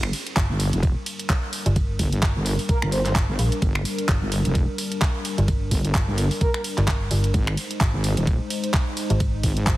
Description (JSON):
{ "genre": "bass house", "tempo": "129 BPM", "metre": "4/4", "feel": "swing 57% on 16ths", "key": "G phrygian", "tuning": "A4 = 440 Hz", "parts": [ { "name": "dark analog pad", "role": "sustained chords", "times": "1.0-9.8 s", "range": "G3 to C5", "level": "-31 LUFS", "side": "left 2 dB", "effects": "chorus, sidechain pumping" }, { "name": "wobble bass", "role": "bass", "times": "0.0-9.7 s", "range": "Eb1 to Ab1", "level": "-23 LUFS", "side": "equal", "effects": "chorus, overdrive, sidechain pumping" }, { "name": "garage drum kit", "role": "drums", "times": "0.0-9.8 s", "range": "finger snaps, handclaps, hi-hat, ride cymbal", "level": "-28 LUFS", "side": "right 1 dB", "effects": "overdrive" }, { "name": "metallic FM bass", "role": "bass", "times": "0.4-9.8 s", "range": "G1 to Bb1", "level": "-23 LUFS", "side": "equal", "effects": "overdrive, sidechain pumping" }, { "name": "electronic kick drum", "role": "drums", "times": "0.4-9.8 s", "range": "none", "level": "-22 LUFS", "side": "equal", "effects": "none" }, { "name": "breathy flute-like synth lead", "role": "melody", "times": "2.7-3.1, 6.4-6.6 s", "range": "Bb4 to C5", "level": "-30 LUFS", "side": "right 2 dB", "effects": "ensemble chorus, tape echo" } ], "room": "digital ambience", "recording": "heavily compressed radio sound, multiband compression", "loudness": "-20 LUFS", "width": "side -16 dB against mid", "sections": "0.0-9.8 A section", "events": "none", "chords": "0.0 Gm; 7.3 Ab" }